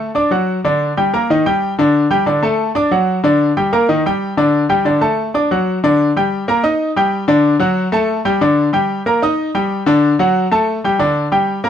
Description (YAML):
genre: latin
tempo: 186 BPM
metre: 4/4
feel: straight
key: G harmonic minor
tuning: A4 = 440 Hz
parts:
  - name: bright grand piano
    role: solo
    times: 0.0-11.7 s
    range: D3 to Eb6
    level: -13 LUFS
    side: left 1 dB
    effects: none
room: light reverb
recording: dark, warm production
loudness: -13 LUFS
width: side -9 dB against mid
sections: 0.0-5.8 A section; 5.8-11.7 B section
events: none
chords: 0.0 D; 0.6 Gm; 1.3 Ebmaj7; 1.9 Gsus2; 2.6 D; 3.2 Gm; 3.9 Ebmaj7; 4.5 Gsus2; 5.2 D; 5.8 G5; 6.5 Eb; 7.1 G5; 7.8 F#m; 8.4 G5; 9.1 Eb; 9.7 G5; 10.3 F#m; 11.0 G5